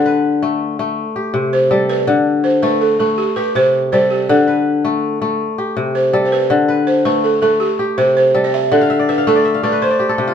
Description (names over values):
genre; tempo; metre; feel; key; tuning
west african traditional; 109 BPM (dotted quarters); 12/8; straight; D dorian; A4 = 440 Hz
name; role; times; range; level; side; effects
balafon; melody; 0.0-10.3 s; G4 to E5; -16 LUFS; right 3 dB; none
kora; arpeggios; 0.0-10.3 s; C3 to F5; -15 LUFS; left 3 dB; none
room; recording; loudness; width
wet stone room reverb, RT60 1.2 s; band playing live in one room; -13 LUFS; side -8 dB against mid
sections
0.0-10.3 A section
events
kora fill 8.8-10.3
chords
0.0 D5; 1.0 C5; 2.1 D5; 3.2 C5; 4.3 D5; 5.4 C5; 6.5 D5; 7.6 C5; 8.7 D5; 9.8 C5